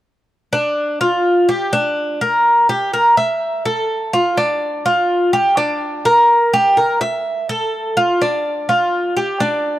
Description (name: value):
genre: latin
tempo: 125 BPM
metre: 4/4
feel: straight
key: D minor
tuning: A4 = 443 Hz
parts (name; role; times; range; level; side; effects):
- Cuban tres; solo; 0.5-9.8 s; D4 to E5; -14 LUFS; equal; none
room: light reverb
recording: dark, warm production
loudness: -14 LUFS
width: side -14 dB against mid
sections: 0.5-9.8 A section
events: none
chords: none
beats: | 0.53 1.01 1.49 1.97 | 2.45 2.93 3.41 3.89 | 4.37 4.85 5.33 5.81 | 6.29 6.77 7.25 7.73 | 8.21 8.69 9.17 9.65